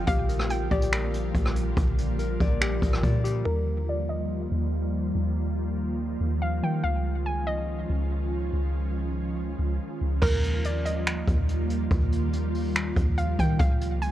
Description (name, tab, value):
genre	hip hop, atmospheric cloud-rap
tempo	142 BPM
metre	4/4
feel	half-time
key	Eb major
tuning	A4 = 439 Hz
part	hollow square pluck	melody	0.0-14.1 s	Bb4 to Ab5	-33 LUFS	equal	chorus, low-pass filter, tape echo
part	ethereal airy pad	sustained chords	0.0-14.1 s	D3 to F4	-31 LUFS	right 1 dB	ensemble chorus, built-in reverb, sidechain pumping, low-pass filter
part	mellow electric guitar	arpeggios	0.0-3.5 s	G4 to D5	-35 LUFS	left 6 dB	tape echo
part	soft 808-style bass	bass	0.0-14.1 s	Bb1 to Eb3	-27 LUFS	equal	none
part	jazz brush drum kit	drums	0.1-3.3, 10.2-14.1 s	crash cymbal, finger snaps, hi-hat, kick drum, rim click	-26 LUFS	equal	none
room	small room ambience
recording	worn, warbling old tape, cassette tape, warbly pitch drift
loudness	-24 LUFS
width	side -13 dB against mid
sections	0.0-3.5 A section; 3.5-10.2 B section; 10.2-14.1 C section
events	filter sweep 3.5-10.2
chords	0.1 Bb6; 3.5 Ebadd9; 6.8 Dbadd9; 10.2 Ebadd9; 13.6 Dbadd9